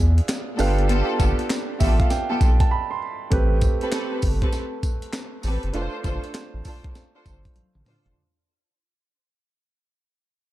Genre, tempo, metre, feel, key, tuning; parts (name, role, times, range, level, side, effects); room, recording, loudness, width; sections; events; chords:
R&B, new jack swing; 99 BPM; 4/4; swing 64% on 16ths; A minor; A4 = 440 Hz
warm concert grand piano; accompaniment; 0.0-8.2 s; A3 to C6; -28 LUFS; right 5 dB
round analog bass; bass; 0.0-8.1 s; F1 to E2; -21 LUFS; equal
breakbeat sampler-style drum kit; drums; 0.2-8.2 s; handclaps, hi-hat, kick drum, snare drum, tambourine, toms; -23 LUFS; equal
warm studio string section; stabs; 0.6-8.1 s; B3 to C5; -29 LUFS; left 2 dB
digital ambience; dark, warm production; -20 LUFS; side -15 dB against mid
0.0-3.3 A section; 3.3-8.2 B section
grand piano fill 1.5-3.3; break 2.7-3.3; fade-out 3.3-8.2; drum fill 7.6-8.2
0.0 E7b9; 0.6 G9; 3.3 Am9; 5.7 F6